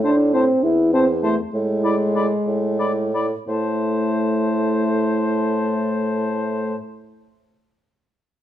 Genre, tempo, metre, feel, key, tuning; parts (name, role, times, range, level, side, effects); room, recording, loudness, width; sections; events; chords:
quick classical-period movement for wind quintet; 57-68 BPM (dotted quarters); 6/8; rubato; A minor; A4 = 440 Hz
silver concert flute; melody; 0.0-6.8 s; A5 to B5; -32 LUFS; left 6 dB
warm oboe; second line; 0.0-6.8 s; C5 to D5; -28 LUFS; left 2 dB
mellow clarinet; accompaniment; 0.0-6.7 s; E4; -29 LUFS; right 6 dB
warm French horn; accompaniment; 0.0-6.8 s; G#3 to E4; -20 LUFS; left 1 dB
mellow bassoon; bass; 0.0-6.8 s; E2 to A2; -23 LUFS; right 2 dB
moderate large studio reverb, RT60 1.3 s; dark, warm production; -18 LUFS; side -11 dB against mid
0.0-3.5 A section; 3.5-7.5 B section
slowing down 0.0-3.5
0.0 Am; 1.5 E7/A; 3.5 Am